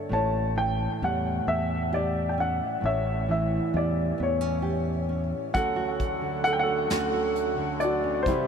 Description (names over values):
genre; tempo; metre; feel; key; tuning
acoustic folk-pop ballad; 44 BPM (dotted quarters); 6/8; straight; D major; A4 = 440 Hz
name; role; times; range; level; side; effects
nylon-string guitar; accompaniment; 0.0-8.5 s; D2 to A4; -30 LUFS; right 4 dB; none
warm upright piano; melody; 0.1-8.5 s; E4 to A5; -27 LUFS; left 1 dB; ping-pong delay
fingered electric bass; bass; 0.1-5.3 s; A1 to E2; -29 LUFS; left 1 dB; none
hand-pumped harmonium; sustained chords; 5.5-8.5 s; C3 to F#4; -34 LUFS; left 2 dB; none
soft brush drum kit; drums; 5.5-8.5 s; hi-hat, kick drum, snare drum; -33 LUFS; equal; none
room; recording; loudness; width
wet huge ambient reverb, RT60 8.7 s; dreamy mix soaked in reverb; -24 LUFS; side -7 dB against mid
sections
0.0-5.6 A section; 5.6-8.5 B section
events
none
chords
0.1 A7; 5.6 Dmaj7